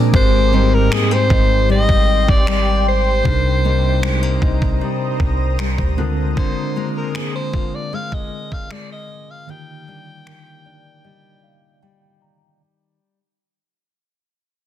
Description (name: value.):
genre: contemporary R&B.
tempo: 77 BPM.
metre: 4/4.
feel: straight.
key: unclear.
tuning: A4 = 439 Hz.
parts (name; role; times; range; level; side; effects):
mellow tine electric piano; accompaniment; 0.0-12.6 s; Ab2 to Bb5; -22 LUFS; right 1 dB; medium stereo tremolo.
granular cloud pad; sustained chords; 0.0-6.4 s; G4 to Eb6; -28 LUFS; left 1 dB; built-in reverb.
nylon-string guitar; arpeggios; 0.0-13.2 s; Ab2 to F4; -24 LUFS; left 6 dB; digital delay.
clean 808-style bass; bass; 0.1-6.3 s; Ab1 to D2; -18 LUFS; right 1 dB; none.
detuned 8-bit digital drum machine; drums; 0.1-10.4 s; finger snaps, kick drum; -20 LUFS; equal; overdrive.
clear alto saxophone; melody; 0.2-11.8 s; Ab4 to G5; -22 LUFS; left 1 dB; digital delay.
room: digital ambience.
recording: dense, heavily limited modern master.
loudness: -14 LUFS.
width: side -11 dB against mid.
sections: 0.1-12.6 A section.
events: fade-out 0.1-12.6; tine electric piano fill 10.3-12.6; break 11.8-12.6.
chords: 0.1 Abmaj7; 3.3 Cm7; 6.0 Bb7/D; 9.5 Ebmaj7.